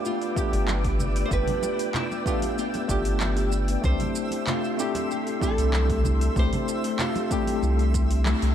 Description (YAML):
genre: sunset chillout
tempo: 95 BPM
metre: 4/4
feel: straight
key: C major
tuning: A4 = 440 Hz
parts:
  - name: nylon-string guitar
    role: melody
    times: 0.0-8.5 s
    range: E4 to C5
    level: -32 LUFS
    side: right 2 dB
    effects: digital delay
  - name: tine electric piano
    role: accompaniment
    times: 0.0-8.5 s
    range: A3 to G4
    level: -30 LUFS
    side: moving between left 3 dB and right 3 dB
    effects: medium stereo tremolo, auto-pan, digital delay
  - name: soft string machine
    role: sustained chords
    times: 0.0-8.5 s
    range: A4 to D6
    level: -34 LUFS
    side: equal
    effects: phaser, ensemble chorus
  - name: buzzing kalimba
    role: arpeggios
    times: 0.0-8.4 s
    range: A3 to G4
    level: -33 LUFS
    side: left 8 dB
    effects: digital delay
  - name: twinkling granular texture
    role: texture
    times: 0.0-8.5 s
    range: E5 to E6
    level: -40 LUFS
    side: right 1 dB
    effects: built-in reverb
  - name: deep house drum kit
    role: drums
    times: 0.1-8.5 s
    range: handclaps, hi-hat, shaker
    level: -34 LUFS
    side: right 1 dB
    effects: overdrive, small room ambience
  - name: electronic kick drum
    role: drums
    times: 0.4-8.1 s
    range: none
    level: -29 LUFS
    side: equal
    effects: overdrive, small room ambience
  - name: round analog bass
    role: bass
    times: 0.5-8.5 s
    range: G1 to C2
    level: -24 LUFS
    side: equal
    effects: none
  - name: congas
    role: percussion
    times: 0.5-8.4 s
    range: none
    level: -35 LUFS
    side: right 2 dB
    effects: none
room: light reverb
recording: none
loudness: -22 LUFS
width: side -10 dB against mid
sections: 0.0-8.5 A section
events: band accent 8.3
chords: 0.0 G7; 3.8 C6